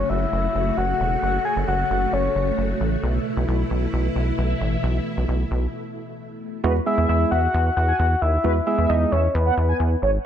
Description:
synth-pop; 133 BPM; 4/4; straight; E major; A4 = 440 Hz
soft octave-layered synth lead; melody; 0.0-2.8, 6.9-10.0 s; B4 to G#5; -23 LUFS; left 3 dB; chorus, digital delay
string machine, full ensemble; sustained chords; 0.0-6.6 s; B2 to F#4; -27 LUFS; equal; phaser, ensemble chorus
rubbery square bass; bass; 0.0-10.2 s; E1 to E2; -22 LUFS; equal
mellow synth brass; second line; 6.6-10.1 s; B4 to G#5; -27 LUFS; right 2 dB; chorus, digital delay
tine electric piano; accompaniment; 6.6-9.1 s; G#3 to G#4; -24 LUFS; right 7 dB
light reverb; -19 LUFS; side -9 dB against mid
0.0-6.6 A section; 6.6-10.3 B section
break 5.7-6.6
0.0 F#m; 3.0 B7sus4; 6.6 Eadd9

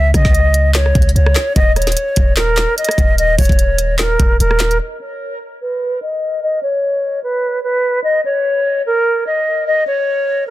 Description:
hip hop, trap; 148 BPM; 4/4; half-time; A4 = 440 Hz
hollow concert flute; melody; 0.0-10.5 s; A#4 to E5; -16 LUFS; equal; low-pass filter, tape echo
clean 808-style bass; bass; 0.0-4.8 s; D#1 to C#3; -15 LUFS; equal
trap drum kit; drums; 0.1-4.8 s; handclaps, hi-hat, kick drum, rim click, snare drum; -15 LUFS; equal; soft clipping on snare
little or no reverb; dense, heavily limited modern master; -12 LUFS; side -15 dB against mid
0.0-4.8 A section; 4.8-10.5 B section
filter sweep on flute 4.8-10.5
0.0 N.C.; 1.6 D#5; 4.8 N.C.

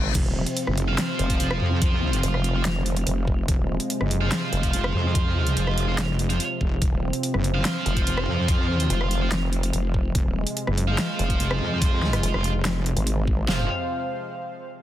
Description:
heavy wobble dubstep; 144 BPM; 4/4; half-time; F phrygian; A4 = 440 Hz
lush unison pad; sustained chords; 0.0-13.7 s; C3 to F5; -30 LUFS; equal; chorus, sidechain pumping
vowel-sweep wobble bass; bass; 0.0-13.5 s; Eb1 to Ab1; -25 LUFS; equal; chorus, overdrive
wobble bass; bass; 0.1-13.7 s; F1 to F2; -24 LUFS; equal; chorus, overdrive
big-room dance drum kit; drums; 0.1-13.2 s; crash cymbal, hi-hat, rim click, snare drum; -29 LUFS; equal; overdrive
dubstep drum kit; drums; 0.1-13.6 s; kick drum, snare drum, toms; -24 LUFS; equal; overdrive
heavy high-gain guitar; stabs; 0.9-13.6 s; F4 to F5; -30 LUFS; right 3 dB; distortion, dub echo
little or no reverb; dense, heavily limited modern master; -21 LUFS; side -12 dB against mid
0.0-13.5 A section; 13.5-14.8 B section
drop 0.0-13.5
0.0 F5

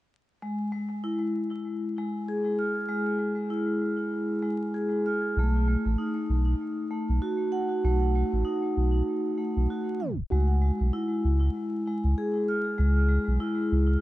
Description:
hip hop; 97 BPM; 4/4; swing 58% on 16ths; A4 = 442 Hz
vibraphone with medium mallets; accompaniment; 0.4-14.0 s; Ab3 to F6; -27 LUFS; equal; tape echo
warm sub bass; bass; 5.4-14.0 s; A1 to C#2; -23 LUFS; equal
light reverb; echo-heavy mix, vinyl crackle, tape stop, nothing above 10.6 kHz; -25 LUFS; side -16 dB against mid
0.4-10.3 A section; 10.3-14.0 B section
tape stop 10.0-10.3
0.4 Fmmaj7/Ab; 5.4 B7; 10.3 C#m

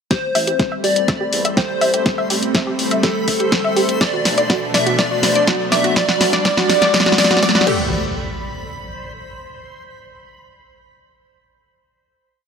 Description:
progressive house; 123 BPM; 4/4; straight; A dorian; A4 = 440 Hz
plucky unison lead; melody; 0.1-7.9 s; A4 to E5; -20 LUFS; left 1 dB; wide subtle chorus, sidechain pumping, tape echo
lush unison pad; sustained chords; 0.3-7.9 s; B2 to D5; -24 LUFS; right 1 dB; chorus, phaser, sidechain pumping
analog pluck; arpeggios; 0.1-7.9 s; F#4 to E5; -21 LUFS; equal; chorus, sidechain pumping, digital delay
electronic kick drum; drums; 0.1-7.8 s; -20 LUFS; equal; overdrive, high-pass filter on kick
house drum kit; drums; 0.1-7.8 s; crash cymbal, hi-hat, snare drum; -19 LUFS; equal
riser and impact; sound effects; 2.3-9.6 s; -26 LUFS; equal
backwards swelling texture; texture; 1.0-7.9 s; C5 to B5; -30 LUFS; left 3 dB; built-in reverb, sidechain pumping
dark detuned saw bass; bass; 0.4-7.9 s; E1 to E2; -31 LUFS; equal
moderate lush hall reverb, RT60 2.1 s; -14 LUFS; side -6 dB against mid
0.1-7.9 build; 7.9-9.9 final hit
build-up 0.1-7.9; drum fill 0.1-7.9; filter sweep on synth pluck 0.1-7.9; riser 2.3-7.9
0.1 Am7; 4.0 Bm7; 6.0 Gmaj7; 7.7 Am7; 7.9 N.C.

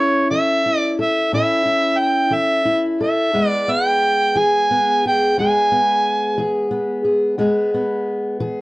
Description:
acoustic country blues, solo or duo; 59 BPM (dotted quarters); 12/8; straight; E major; A4 = 440 Hz
mellow harmonica; melody; 0.0-6.7 s; C#5 to G#5; -17 LUFS; right 1 dB
fingerpicked steel-string acoustic guitar; accompaniment; 0.0-8.6 s; E2 to A4; -19 LUFS; left 1 dB
moderate studio ambience, RT60 0.5 s; worn, warbling old tape, cassette tape, warbly pitch drift; -15 LUFS; side -21 dB against mid
0.0-8.6 A section
0.0 A; 3.3 E

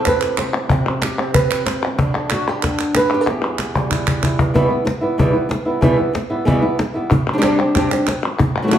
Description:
flamenco; 187 BPM; 4/4; straight; E minor; A4 = 441 Hz
flamenco guitar; melody; 0.0-8.8 s; E2 to C5; -18 LUFS; right 1 dB
cajon; percussion; 0.1-8.8 s; -20 LUFS; left 1 dB
palmas hand claps; percussion; 0.1-4.5, 7.1-8.8 s; -22 LUFS; equal
wet large studio reverb, RT60 0.9 s; heard from further back in the room; -15 LUFS; side -10 dB against mid
0.0-4.5 A section; 4.5-8.8 B section
drum fill 3.3-4.5
0.0 C; 2.0 D5; 3.3 Em; 7.1 Csus2

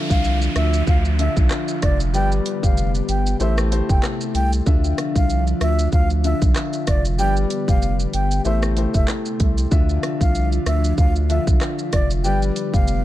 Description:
dancehall; 95 BPM; 4/4; swing 56% on 16ths; D dorian; A4 = 440 Hz
dark grand piano; accompaniment; 0.0-13.0 s; D3 to E5; -26 LUFS; left 5 dB
airy breathy pad; sustained chords; 0.0-13.0 s; C3 to G4; -28 LUFS; right 1 dB; chorus, sidechain pumping
downlifter; sound effects; 0.0-4.7 s; -33 LUFS; right 1 dB
mellow concert flute; melody; 0.1-13.0 s; D5 to G5; -27 LUFS; equal; ping-pong delay
saturated sub bass; bass; 0.1-13.0 s; F1 to D2; -20 LUFS; equal
pop drum kit; drums; 0.1-13.0 s; handclaps, hi-hat, kick drum, rim click, shaker; -20 LUFS; equal
little or no reverb; dark, warm production; -17 LUFS; side -14 dB against mid
0.0-13.0 A section
0.0 Dmadd9; 2.1 G; 3.4 Am7; 4.7 Dmadd9; 7.2 G; 8.5 Am7; 9.7 Dmadd9; 12.2 G

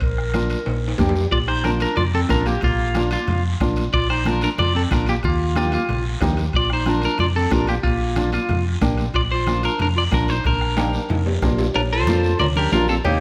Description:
latin, cumbia; 184 BPM; 4/4; straight; Bb major; A4 = 443 Hz
warm clarinet; second line; 0.0-13.2 s; Bb3 to Bb4; -29 LUFS; equal
fingered electric bass; bass; 0.0-13.2 s; Bb1 to F2; -25 LUFS; equal
bombo; percussion; 0.0-11.6 s; -27 LUFS; equal
congas; percussion; 0.0-13.2 s; -32 LUFS; equal
guiro; percussion; 0.0-13.2 s; -39 LUFS; equal
timbales and cowbell; percussion; 0.0-13.2 s; -33 LUFS; equal
flamenco guitar; accompaniment; 0.3-13.0 s; Bb3 to G4; -27 LUFS; equal
clean electric guitar; melody; 1.3-13.2 s; Eb4 to D5; -26 LUFS; equal; spring reverb
moderate large studio reverb, RT60 1.4 s; -20 LUFS; mono
0.0-1.3 A section; 1.3-11.7 B section; 11.7-13.2 C section
clarinet solo 0.0-1.3; drum fill 0.7-1.3, 10.8-11.7
0.0 Bb; 5.2 Eb; 6.5 Bb

